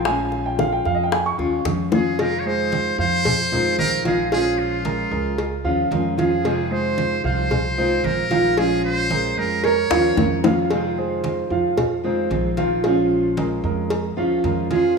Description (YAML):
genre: latin, Cuban son and guajira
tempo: 113 BPM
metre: 4/4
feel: straight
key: unclear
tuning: A4 = 442 Hz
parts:
  - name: fingerpicked steel-string acoustic guitar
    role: accompaniment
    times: 0.0-15.0 s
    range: C3 to F4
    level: -24 LUFS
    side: left 4 dB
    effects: none
  - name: dark grand piano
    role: arpeggios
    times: 0.0-15.0 s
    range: F3 to Db6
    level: -23 LUFS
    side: right 5 dB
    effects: none
  - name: upright bass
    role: bass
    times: 0.0-15.0 s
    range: Bb1 to F2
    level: -28 LUFS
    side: right 1 dB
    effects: none
  - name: bongos and cowbell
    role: percussion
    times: 0.1-15.0 s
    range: none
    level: -25 LUFS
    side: left 4 dB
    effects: none
  - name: congas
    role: percussion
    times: 0.1-15.0 s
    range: none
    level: -29 LUFS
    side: equal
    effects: none
  - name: trumpet with metal mute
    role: melody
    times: 1.9-10.4, 14.7-15.0 s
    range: F4 to Db5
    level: -24 LUFS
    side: equal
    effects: none
  - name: nylon-string guitar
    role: second line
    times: 9.6-10.4, 14.7-15.0 s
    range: F4 to Bb4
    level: -23 LUFS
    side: right 9 dB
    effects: none
room: moderate plate reverb, RT60 2.2 s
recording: rough home demo mix, studio ambience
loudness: -18 LUFS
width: side -4 dB against mid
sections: 0.0-2.2 A section; 2.2-15.0 B section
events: grand piano solo 0.0-2.2; drum fill 1.7-2.2, 9.9-10.7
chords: 0.1 Bbm7; 2.2 Fm7; 4.3 Bbm7; 6.4 Fm7; 8.6 Bbm7; 10.7 Fm7; 12.8 Bbm7